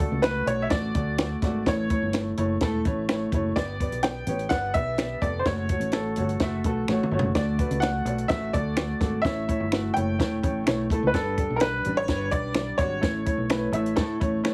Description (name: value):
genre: uptempo 1960s-style soul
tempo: 127 BPM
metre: 4/4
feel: straight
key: D major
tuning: A4 = 439 Hz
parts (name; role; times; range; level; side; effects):
- clear baby grand piano; melody; 0.0-14.4 s; A4 to G5; -31 LUFS; equal; none
- clear upright piano; accompaniment; 0.0-14.5 s; G3 to E5; -30 LUFS; equal; none
- fingered electric bass; bass; 0.0-14.4 s; E1 to A2; -33 LUFS; equal; none
- compact cocktail drum kit; drums; 0.0-14.5 s; hi-hat, kick drum, snare drum, toms; -29 LUFS; equal; none
- finger snaps; percussion; 0.2-14.5 s; none; -36 LUFS; equal; none
room: light reverb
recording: heavily compressed radio sound, multiband compression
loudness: -26 LUFS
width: mono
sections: 0.0-14.5 A section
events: drum fill 6.9-7.4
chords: 0.0 D; 1.7 A; 3.6 G; 5.5 F#m; 7.4 D; 9.2 A; 11.1 G; 13.0 A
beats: 0.24 0.72 1.19 | 1.67 2.14 2.62 3.09 | 3.57 4.04 4.51 4.99 | 5.46 5.94 6.41 6.88 | 7.36 7.83 8.30 8.78 | 9.25 9.72 10.20 10.67 | 11.14 11.62 12.09 12.56 | 13.04 13.51 13.98 14.46